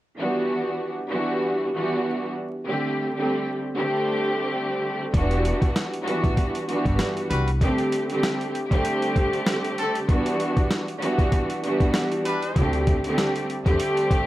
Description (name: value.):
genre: hip hop, boom-bap hip-hop.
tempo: 97 BPM.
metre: 4/4.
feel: swing 55% on 16ths.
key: E minor.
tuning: A4 = 440 Hz.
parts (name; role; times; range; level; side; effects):
warm studio string section; accompaniment; 0.2-14.3 s; D3 to G4; -23 LUFS; equal; cassette tape, high-pass filter, low-pass filter.
upright bass; bass; 5.1-7.6, 12.6-13.8 s; E1 to E2; -25 LUFS; equal; none.
boom bap sampler-style drum kit; drums; 5.1-14.3 s; hi-hat, kick drum, snare drum; -24 LUFS; equal; none.
warm trumpet section; stabs; 7.3-12.7 s; G3 to B4; -29 LUFS; left 2 dB; high-pass filter, low-pass filter, ping-pong delay.
room: small room ambience.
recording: vinyl crackle.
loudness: -21 LUFS.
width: side -15 dB against mid.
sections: 0.2-5.1 A section; 5.1-14.3 B section.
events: none.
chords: 0.2 Em9; 2.7 D7sus4; 5.1 Em9; 7.6 D7sus4; 10.1 Em9; 12.6 D7sus4.